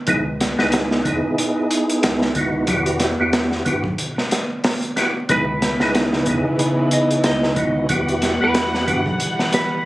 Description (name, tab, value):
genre	trip hop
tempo	92 BPM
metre	4/4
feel	swing 57% on 16ths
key	unclear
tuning	A4 = 440 Hz
part	percussive tonewheel organ	accompaniment	0.1-9.0 s	B3 to G#4	-20 LUFS	right 1 dB	chorus vibrato, fast rotary speaker, tremolo, tape echo
part	round analog bass	bass	0.1-9.2 s	G#1 to G2	-28 LUFS	equal	none
part	crunchy breakbeat drum kit	drums	0.1-9.7 s	hi-hat, kick drum, snare drum	-21 LUFS	equal	none
part	mellow electric guitar	melody	5.3-9.9 s	B4 to D#5	-24 LUFS	equal	tape echo
part	dark studio string section	sustained chords	5.3-9.9 s	C#3 to F#5	-23 LUFS	equal	none
room	studio ambience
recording	recorded on a phone in the room, club reverb, vinyl crackle, compression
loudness	-17 LUFS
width	side -17 dB against mid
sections	0.0-9.9 A section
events	none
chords	0.1 C#m7; 2.7 Emadd9; 5.3 C#m7; 7.9 Emadd9